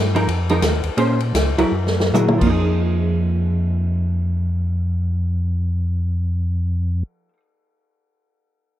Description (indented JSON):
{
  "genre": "soul jazz organ trio",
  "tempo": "130-184 BPM",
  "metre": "4/4",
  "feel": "swing 62% on 8ths",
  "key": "F minor",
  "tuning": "A4 = 440 Hz",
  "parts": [
    { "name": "mellow tonewheel organ", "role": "bass", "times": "0.0-7.0 s", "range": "Db2 to Bb2", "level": "-19 LUFS", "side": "equal", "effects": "chorus vibrato, slow rotary speaker" },
    { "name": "vintage hollow-body jazz guitar", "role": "accompaniment", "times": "0.1-7.4 s", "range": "F3 to C5", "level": "-21 LUFS", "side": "right 2 dB", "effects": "ensemble chorus" },
    { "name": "swinging big-band drum kit", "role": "drums", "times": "0.2-2.5 s", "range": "crash cymbal, hi-hat, kick drum, ride cymbal, snare drum, toms", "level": "-22 LUFS", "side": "left 1 dB", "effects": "none" }
  ],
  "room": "light reverb, small room ambience",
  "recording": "none",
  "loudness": "-17 LUFS",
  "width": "side -12 dB against mid",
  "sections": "0.0-2.6 A section; 2.6-6.3 B section",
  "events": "slowing down 0.0-2.6; drum fill 1.7-2.6",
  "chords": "0.3 Fm7; 1.0 Bbm9; 1.7 Gb9; 2.4 Fm7",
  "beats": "0.28 0.62 | 0.97 1.34 1.73 2.14 | 2.58 3.04 3.50 3.96 | 4.42 4.88 5.35 5.81"
}